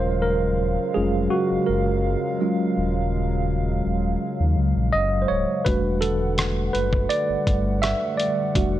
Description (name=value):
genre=contemporary R&B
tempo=83 BPM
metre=4/4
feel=straight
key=unclear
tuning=A4 = 441 Hz
part: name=mellow tine electric piano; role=accompaniment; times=0.0-8.8 s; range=F#3 to E5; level=-23 LUFS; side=right 1 dB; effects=medium stereo tremolo
part: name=hollow soft pad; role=sustained chords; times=0.0-8.8 s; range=C#3 to F#5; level=-28 LUFS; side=left 1 dB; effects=chorus
part: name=sub bass with octave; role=bass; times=0.0-8.8 s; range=C#1 to D#2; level=-24 LUFS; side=equal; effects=none
part: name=dusty soul sampler-style drum kit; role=drums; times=5.7-8.7 s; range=hi-hat, kick drum, rim click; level=-25 LUFS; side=equal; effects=vintage 12-bit sampler grit
room=light reverb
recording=dry, gritty hardware recording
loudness=-20 LUFS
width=side -13 dB against mid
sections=0.0-8.8 A section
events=tine electric piano solo 0.0-8.8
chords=0.0 D#m11; 5.7 Em11